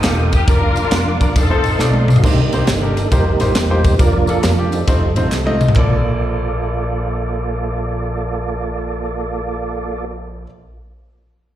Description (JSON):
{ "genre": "uptempo gospel", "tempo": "136 BPM", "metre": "4/4", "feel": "swing 66% on 8ths", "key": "Bb major", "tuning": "A4 = 439 Hz", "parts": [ { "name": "muted studio string section", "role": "melody", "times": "0.0-2.2 s", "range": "C4 to Bb4", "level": "-21 LUFS", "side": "left 4 dB", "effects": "slapback echo" }, { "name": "clear baby grand piano", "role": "accompaniment", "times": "0.0-10.5 s", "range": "Bb1 to Eb5", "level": "-24 LUFS", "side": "left 2 dB", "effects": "slapback echo" }, { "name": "tonewheel organ", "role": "sustained chords", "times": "0.0-10.0 s", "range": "Eb3 to Eb6", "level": "-22 LUFS", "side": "right 4 dB", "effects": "slow rotary speaker, overdrive, chorus vibrato" }, { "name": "fingered electric bass", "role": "bass", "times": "0.0-10.4 s", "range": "E1 to F2", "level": "-19 LUFS", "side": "equal", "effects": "none" }, { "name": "crisp fusion drum kit", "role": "drums", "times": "0.0-5.9 s", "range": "crash cymbal, kick drum, ride cymbal, snare drum, toms", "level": "-16 LUFS", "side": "equal", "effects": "none" }, { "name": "handclaps and tambourine", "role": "percussion", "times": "0.0-6.0 s", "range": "none", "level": "-30 LUFS", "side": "right 3 dB", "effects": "slapback echo" } ], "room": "light reverb", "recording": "live gig heard through the venue's PA, recital hall reverb", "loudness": "-14 LUFS", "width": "side -12 dB against mid", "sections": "0.0-2.2 A section; 2.2-5.8 B section; 5.8-9.3 C section", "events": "drum fill 1.8-2.2, 5.3-5.8; tonewheel organ solo 2.2-5.8", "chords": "0.5 Bb/F; 1.4 F7; 2.2 Cm7; 3.1 F9sus4; 4.0 Bb/F; 4.9 F7; 5.8 Bbmaj7" }